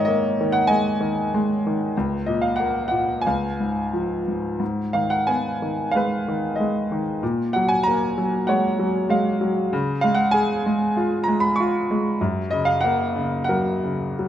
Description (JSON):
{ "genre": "classical, lyrical solo piano", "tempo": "84-100 BPM", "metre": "4/4", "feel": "rubato", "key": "F# major", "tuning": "A4 = 444 Hz", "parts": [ { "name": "clear grand piano", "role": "solo", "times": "0.0-14.3 s", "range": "C#2 to C#6", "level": "-20 LUFS", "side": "equal", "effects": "none" } ], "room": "wet recital hall reverb, RT60 1.5 s", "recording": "none", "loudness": "-20 LUFS", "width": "side -10 dB against mid", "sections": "0.0-14.3 A section", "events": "none", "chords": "0.0 G#sus2; 1.9 D#m9/C#; 3.2 C#; 4.6 G#m; 7.2 F#add9/A#; 9.7 C#; 12.2 F#", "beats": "0.07 0.68 1.31 | 1.95 2.58 3.25 3.93 | 4.61 5.28 5.94 6.58 | 7.22 7.86 8.49 9.11 | 9.72 10.33 10.95 11.56 | 12.19 12.83 13.49 14.17" }